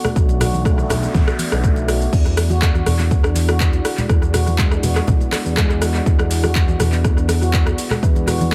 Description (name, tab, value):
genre	afro house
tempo	122 BPM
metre	4/4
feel	straight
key	unclear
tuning	A4 = 439 Hz
part	dark analog pad	sustained chords	0.0-8.5 s	B3 to D5	-32 LUFS	equal	chorus, sidechain pumping
part	handpan	arpeggios	0.0-8.5 s	G#3 to F#4	-27 LUFS	equal	sidechain pumping, analog delay
part	deep house drum kit	drums	0.0-8.5 s	crash cymbal, handclaps, hi-hat, rim click, shaker	-25 LUFS	equal	overdrive, analog delay
part	congas	percussion	0.0-8.5 s	none	-28 LUFS	equal	analog delay
part	smooth synth bass	bass	0.2-8.5 s	A1 to E2	-22 LUFS	equal	sidechain pumping
part	electronic kick drum	drums	0.2-8.5 s	none	-19 LUFS	equal	overdrive
part	noise sweep	sound effects	0.6-2.1 s	none	-35 LUFS	equal	none
room	little or no reverb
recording	echo-heavy mix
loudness	-17 LUFS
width	mono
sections	0.0-8.5 A section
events	noise sweep 0.6-2.1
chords	0.0 Bm7; 2.1 E7